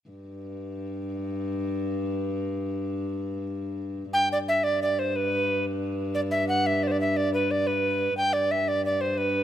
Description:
medieval; 119 BPM (dotted quarters); 6/8; straight; G major; A4 = 440 Hz
warm viola da gamba; drone; 0.1-9.4 s; G2; -29 LUFS; left 1 dB; stereo widening
bright reedy tenor recorder; melody; 4.1-9.4 s; B4 to G5; -24 LUFS; right 1 dB
moderate lush hall reverb, RT60 2.6 s; rough home demo mix; -24 LUFS; side -11 dB against mid
0.1-4.1 A section; 4.1-9.4 B section
| 0.10 0.60 | 1.10 1.61 | 2.11 2.62 | 3.12 3.62 | 4.13 4.63 | 5.13 5.64 | 6.14 6.65 | 7.15 7.65 | 8.16 8.66 | 9.16

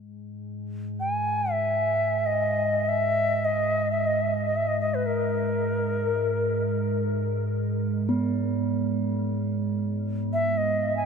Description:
world meditative, free-time meditation music; free time; G# hirajoshi; A4 = 441 Hz
deep rumbling drone; drone; 0.0-11.1 s; G#2 to G#3; -28 LUFS; right 1 dB; built-in reverb
reedy Native American-style cedar flute; melody; 1.0-11.1 s; A#4 to G#5; -25 LUFS; left 1 dB; tape echo
quartz singing bowl; texture; 8.1-11.1 s; B3; -29 LUFS; right 5 dB
wet huge ambient reverb, RT60 7.7 s; -23 LUFS; side -6 dB against mid
0.0-11.1 A section
free time

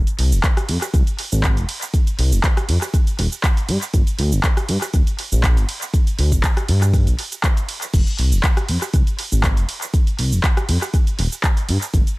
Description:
deep house; 120 BPM; 4/4; swing 54% on 16ths; F dorian; A4 = 442 Hz
smooth gliding synth bass; bass; 0.0-12.0 s; D1 to G2; -17 LUFS; equal; sidechain pumping
punchy analog drum machine; drums; 0.1-12.2 s; cabasa, crash cymbal, handclaps, hi-hat, ride cymbal, rim click; -24 LUFS; right 1 dB; tape echo
electronic kick drum; drums; 0.4-12.0 s; -17 LUFS; equal
little or no reverb; echo-heavy mix; -16 LUFS; side -22 dB against mid
0.0-12.2 A section
0.44 0.94 1.44 | 1.94 2.44 2.94 3.44 | 3.94 4.44 4.94 5.44 | 5.94 6.44 6.94 7.44 | 7.94 8.44 8.94 9.44 | 9.94 10.44 10.94 11.44 | 11.94

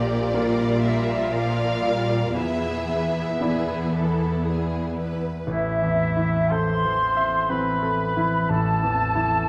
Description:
cinematic, emotional film score for orchestra; 59 BPM; 3/4; rubato; A minor from 5.5 s; A4 = 441 Hz
dark symphonic violin section; melody; 0.0-4.4 s; D5 to F5; -32 LUFS; equal
rich symphonic violin section; second line; 0.0-5.5 s; F4 to E5; -33 LUFS; equal
bright grand piano; accompaniment; 0.0-9.5 s; A1 to E5; -29 LUFS; equal
rich symphonic viola section; accompaniment; 0.0-5.2 s; F3 to G4; -32 LUFS; equal
concert harp; arpeggios; 0.0-9.5 s; A2 to D6; -34 LUFS; equal
rich symphonic cello section; bass; 0.0-5.3 s; E2 to Bb2; -29 LUFS; equal
small flute group; second line; 5.5-9.5 s; E5 to C6; -26 LUFS; equal
warm oboe; second line; 5.5-9.5 s; E4 to C5; -31 LUFS; equal
moderate scoring stage reverb, RT60 2.0 s; dark, warm production; -23 LUFS; mono
0.0-5.5 A section; 5.5-9.5 B section
0.0 Bb; 2.4 E7; 5.5 Am
0.34 1.33 | 2.36 3.41 4.45 | 5.48 6.51 7.50 | 8.50 9.48

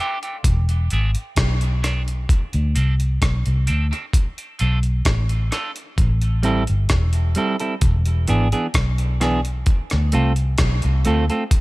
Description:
dub reggae; 65 BPM; 4/4; straight; A4 = 441 Hz
clean electric guitar; accompaniment; 0.0-11.4 s; E3 to A4; -25 LUFS; right 2 dB; high-pass filter, dub echo
breakbeat sampler-style drum kit; drums; 0.2-11.6 s; hi-hat, kick drum, rim click; -21 LUFS; equal
vintage muted fingered electric bass; bass; 0.5-11.3 s; E1 to D2; -18 LUFS; equal
little or no reverb; -17 LUFS; side -21 dB against mid
0.0-11.6 A section
0.4 E7; 2.3 Dm7; 4.1 Bm7b5; 6.0 Am7; 7.8 E7; 9.7 Dm7
0.45 1.37 | 2.29 3.21 4.14 5.06 | 5.98 6.91 7.83 8.75 | 9.67 10.59 11.51

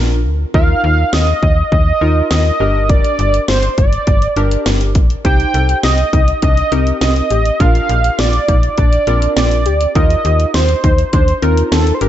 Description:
synth-pop; 102 BPM; 4/4; straight; A4 = 440 Hz
warm analog keys; accompaniment; 0.0-12.1 s; D4 to C5; -21 LUFS; left 1 dB; chorus
slap-like FM bass; bass; 0.0-12.1 s; G1 to Eb2; -15 LUFS; equal
downlifter; sound effects; 0.0-0.5 s; barely audible
octave-doubled lead; melody; 0.5-12.1 s; A4 to G5; -17 LUFS; right 2 dB; chorus, digital delay
house drum kit; drums; 0.5-12.1 s; hi-hat, kick drum, snare drum; -15 LUFS; equal
warbly dusty pluck; arpeggios; 5.2-12.1 s; C4 to A4; -23 LUFS; left 2 dB; chorus, phaser, digital delay
little or no reverb; nothing above 7.9 kHz; -11 LUFS; side -12 dB against mid
0.0-12.1 A section
0.0 Bb; 0.5 Ebsus2; 2.6 Gm; 5.2 Cm; 7.6 Bb; 10.0 Ebsus2
| 0.54 1.13 1.72 2.31 | 2.90 3.48 4.07 4.66 | 5.25 5.84 6.42 7.01 | 7.60 8.19 8.78 9.37 | 9.95 10.54 11.13 11.72

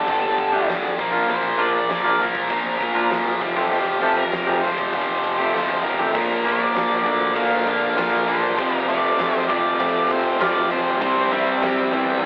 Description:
quiet-loud alternative rock; 99 BPM; 4/4; straight; A4 = 441 Hz
octave-fuzz lead guitar; melody; 0.0-12.2 s; G4 to F5; -24 LUFS; equal; distortion
high-gain distorted guitar; riff; 0.0-12.3 s; F2 to C4; -22 LUFS; equal; distortion
fuzz fingered electric bass; bass; 0.0-12.3 s; F1 to Bb2; -32 LUFS; equal; overdrive
electric guitar at the edge of break-up; arpeggios; 0.1-12.3 s; F2 to G4; -23 LUFS; equal
huge arena drum kit; drums; 0.1-12.1 s; crash cymbal, hi-hat, kick drum, ride cymbal, snare drum, toms; -28 LUFS; equal
overdriven semi-hollow guitar; riff; 11.0-12.3 s; C3 to C4; -22 LUFS; equal
moderate studio reverb, RT60 0.5 s; rough rehearsal-room recording, warm saturation, telephone sound; -18 LUFS; side -36 dB against mid
0.0-6.2 A section; 6.2-12.3 B section
drum fill 5.5-6.2
0.0 Gsus2; 1.0 Bb; 3.4 Fadd9; 6.2 Bb; 8.6 F; 11.0 C
0.08 0.69 | 1.29 1.90 2.51 3.11 | 3.72 4.33 4.94 5.55 | 6.16 6.76 7.37 7.98 | 8.59 9.20 9.81 10.41 | 11.02 11.63 12.24

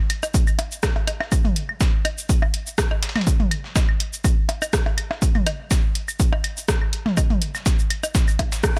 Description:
techno; 123 BPM; 4/4; swing 54% on 16ths
dusty soul sampler-style drum kit; drums; 0.1-8.8 s; hi-hat, snare drum; -36 LUFS; equal; high-pass filter on snare, high-pass filter on hats, high-pass filter on room
punchy analog drum machine; drums; 0.1-8.8 s; hi-hat, rim click, shaker; -29 LUFS; equal
electronic claves, percussion blips and toms; percussion; 0.1-8.8 s; -29 LUFS; equal; dub echo
electronic kick drum; drums; 0.3-8.7 s; -23 LUFS; equal
digital ambience; -22 LUFS; mono
0.0-8.8 A section
band accent 8.6
0.34 0.83 | 1.32 1.81 2.29 2.78 | 3.27 3.76 4.25 4.73 | 5.22 5.71 6.20 6.68 | 7.17 7.66 8.15 8.63

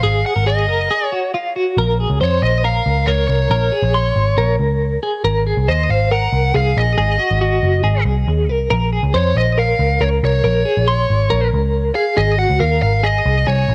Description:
jangly indie pop; 138 BPM; 4/4; straight; Bb minor; A4 = 440 Hz
smooth overdriven lead guitar; melody; 0.0-13.7 s; Db5 to Gb5; -22 LUFS; equal; cassette tape
twelve-string electric guitar; arpeggios; 0.0-13.7 s; F4 to C6; -22 LUFS; equal; tremolo, cassette tape
vintage muted picked electric bass; bass; 0.0-13.7 s; Gb1 to F2; -19 LUFS; equal
light reverb, digital ambience; home recording on cassette, nothing above 10.4 kHz; -16 LUFS; mono
0.0-1.8 A section; 1.8-13.7 B section
break 0.9-1.8
0.0 Ab7(no3); 1.8 Bbm7; 5.2 Ab7; 8.7 Bbm7; 12.2 Ab7(no3)
| 0.04 0.47 0.91 1.34 | 1.78 2.21 2.65 3.08 | 3.52 3.95 4.38 4.82 | 5.25 5.68 6.12 6.55 | 6.98 7.42 7.85 8.28 | 8.71 9.15 9.58 10.01 | 10.45 10.88 11.31 11.74 | 12.18 12.61 13.04 13.47

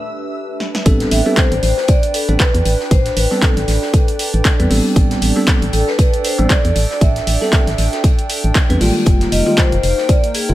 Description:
deep house; 117 BPM; 4/4; swing 57% on 16ths; A minor; A4 = 438 Hz
hollow soft pad; sustained chords; 0.0-10.5 s; A3 to G5; -25 LUFS; right 2 dB; chorus, sidechain pumping
punchy analog drum machine; drums; 0.6-10.5 s; handclaps, hi-hat, snare drum; -21 LUFS; equal
bell-like tine electric piano; stabs; 0.9-10.5 s; D#3 to B4; -19 LUFS; equal; phaser, sidechain pumping, tape echo
organ-like FM bass; bass; 0.9-10.5 s; F1 to E2; -17 LUFS; equal; tube saturation, sidechain pumping
electronic kick drum; drums; 0.9-10.2 s; -14 LUFS; equal
oversized low-tuned drum kit; drums; 0.9-10.5 s; hi-hat, snare drum; -29 LUFS; left 3 dB; sidechain pumping on hats, high-pass filter on hats, high-pass filter on snare, high-pass filter on room
vibraphone with medium mallets; melody; 1.1-10.5 s; Ab4 to E5; -21 LUFS; left 1 dB; tape echo
studio reverb; -12 LUFS; side -15 dB against mid
0.9-10.5 A section
drum fill 0.6; drop 0.9-10.5
0.0 A9sus4; 0.9 Am11; 9.1 Fm11
0.35 | 0.86 1.37 1.89 2.40 | 2.91 3.42 3.94 4.45 | 4.96 5.47 5.99 6.50 | 7.01 7.53 8.04 8.55 | 9.06 9.58 10.09

